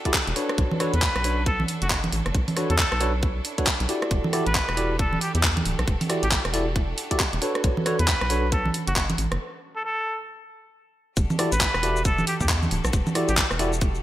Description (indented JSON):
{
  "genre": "UK garage, two-step garage",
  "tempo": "136 BPM",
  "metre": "4/4",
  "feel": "swing 61% on 16ths",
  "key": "E dorian",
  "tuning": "A4 = 440 Hz",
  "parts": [
    { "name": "clear chamber violin section", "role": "sustained chords", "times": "0.0-14.0 s", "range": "C#4 to A4", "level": "-37 LUFS", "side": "right 1 dB", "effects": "sidechain pumping" },
    { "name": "bell-like tine electric piano", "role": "stabs", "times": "0.1-8.5, 11.4-13.7 s", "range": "D4 to D5", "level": "-28 LUFS", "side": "equal", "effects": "lush chorus, low-pass filter, digital delay" },
    { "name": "electronic kick drum", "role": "drums", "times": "0.1-13.9 s", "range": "none", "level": "-25 LUFS", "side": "equal", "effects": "overdrive, studio reverb" },
    { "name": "garage drum kit", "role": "drums", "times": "0.1-14.0 s", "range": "congas, handclaps, hi-hat, rim click, shaker", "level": "-25 LUFS", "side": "right 1 dB", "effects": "overdrive, studio reverb, gated reverb" },
    { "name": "rubbery square bass", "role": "bass", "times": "0.3-14.0 s", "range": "D1 to E2", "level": "-26 LUFS", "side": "equal", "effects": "sidechain pumping" },
    { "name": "trumpet with straight mute", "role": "melody", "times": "0.9-13.5 s", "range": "F#4 to B4", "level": "-29 LUFS", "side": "equal", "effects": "none" }
  ],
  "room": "light reverb",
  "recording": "bright 1980s-style digital production",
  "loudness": "-21 LUFS",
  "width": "side -14 dB against mid",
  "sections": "0.0-11.2 A section; 11.2-14.0 B section",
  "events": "filter sweep on tine electric piano 0.0-11.2; break 9.4-11.2; drop 11.2-14.0",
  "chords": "0.0 Em11; 0.6 Bm9; 4.1 Em11; 7.6 Bm9; 9.4 N.C.; 11.2 Em11"
}